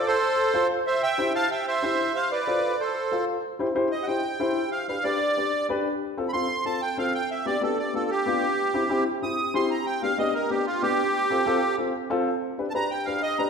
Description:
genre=latin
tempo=187 BPM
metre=4/4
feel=straight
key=C major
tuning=A4 = 442 Hz
part: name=accordion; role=melody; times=0.0-13.5 s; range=F4 to Eb6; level=-25 LUFS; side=right 2 dB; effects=light tremolo tuning
part: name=dark upright piano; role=accompaniment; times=0.0-13.5 s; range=B3 to C5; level=-27 LUFS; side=left 2 dB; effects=none
room=wet recital hall reverb, RT60 1.4 s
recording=recorded in a church or concert hall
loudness=-23 LUFS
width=side -6 dB against mid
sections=0.0-3.4 A section; 3.4-13.5 B section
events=accordion solo 3.4-13.5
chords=0.0 F; 0.9 C; 2.2 F; 3.4 C; 4.7 G; 6.0 F; 7.3 G7; 8.6 C; 9.9 G; 11.1 F; 12.4 G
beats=0.23 0.55 | 0.87 1.19 1.51 1.83 | 2.16 2.48 2.80 3.12 | 3.44 3.76 4.08 4.41 | 4.73 5.05 5.37 5.69 | 6.01 6.33 6.66 6.98 | 7.30 7.62 7.94 8.26 | 8.58 8.90 9.22 9.54 | 9.87 10.19 10.51 10.83 | 11.15 11.47 11.79 12.11 | 12.43 12.75 13.07 13.39

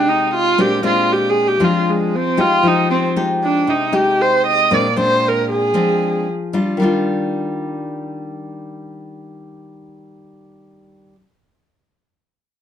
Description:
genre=bossa nova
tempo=116 BPM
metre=4/4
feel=straight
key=Eb major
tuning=A4 = 439 Hz
part: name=warm viola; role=melody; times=0.0-6.2 s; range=Ab3 to Eb5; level=-16 LUFS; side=right 2 dB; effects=plate reverb
part: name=nylon-string guitar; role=accompaniment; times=0.0-11.2 s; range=Bb2 to G4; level=-19 LUFS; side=left 2 dB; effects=none
room=wet small room reverb, RT60 0.5 s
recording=none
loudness=-14 LUFS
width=side -9 dB against mid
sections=0.0-6.8 A section; 6.8-10.9 B section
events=viola solo 0.0-6.8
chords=0.0 Fm9; 0.6 Bb9; 2.6 Fm9; 4.7 Bb9; 6.8 Ebmaj9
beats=0.05 | 0.57 1.08 1.60 2.12 | 2.64 3.16 3.68 4.19 | 4.71 5.23 5.75 6.27 | 6.79 7.30 7.82 8.34 | 8.86 9.38 9.90 10.41

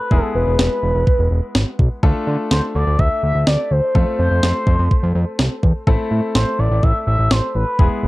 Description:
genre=synth-pop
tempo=125 BPM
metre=4/4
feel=straight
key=A harmonic minor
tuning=A4 = 440 Hz
part: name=expressive portamento lead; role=melody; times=0.0-8.1 s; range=B4 to E5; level=-21 LUFS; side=equal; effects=chorus, digital delay
part: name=bright concert grand piano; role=accompaniment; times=0.0-8.1 s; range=G#3 to A4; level=-25 LUFS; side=left 2 dB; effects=none
part: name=fat analog bass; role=bass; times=0.1-8.1 s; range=E1 to D3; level=-17 LUFS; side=equal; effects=none
part: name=clean 12-bit digital drum machine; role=drums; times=0.1-7.9 s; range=kick drum, snare drum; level=-16 LUFS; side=equal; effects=none
room=little or no reverb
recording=dark, warm production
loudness=-15 LUFS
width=side -19 dB against mid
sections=0.0-8.1 A section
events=none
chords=0.1 E; 2.0 Dm; 4.0 F; 5.9 Am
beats=| 0.11 0.59 1.07 1.55 | 2.03 2.51 2.99 3.47 | 3.95 4.43 4.91 5.39 | 5.87 6.35 6.83 7.31 | 7.79

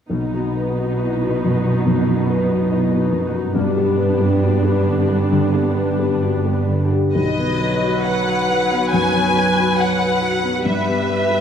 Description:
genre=cinematic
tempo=69 BPM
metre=4/4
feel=rubato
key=unclear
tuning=A4 = 440 Hz
part: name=dark grand piano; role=accompaniment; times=0.1-11.4 s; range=B1 to F#5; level=-20 LUFS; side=left 1 dB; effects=none
part: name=rich symphonic viola section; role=accompaniment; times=0.1-11.4 s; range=F#3 to B4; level=-23 LUFS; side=right 2 dB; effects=none
part: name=concert harp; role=arpeggios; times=0.1-10.4 s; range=G2 to D#5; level=-24 LUFS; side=left 6 dB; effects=none
part: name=warm symphonic cello section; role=bass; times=0.1-6.9 s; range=G2 to B2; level=-22 LUFS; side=right 3 dB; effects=none
part: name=rich symphonic violin section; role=melody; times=7.1-11.4 s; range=D#5 to G#5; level=-20 LUFS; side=left 2 dB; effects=none
room=wet scoring stage reverb, RT60 2.0 s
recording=none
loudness=-16 LUFS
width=side -8 dB against mid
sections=0.1-7.1 A section; 7.1-11.4 B section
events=none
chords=0.1 B; 3.6 G; 7.1 B; 10.7 G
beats=| 0.11 1.00 1.86 2.71 | 3.56 4.42 5.31 6.21 | 7.15 8.04 8.92 9.79 | 10.66

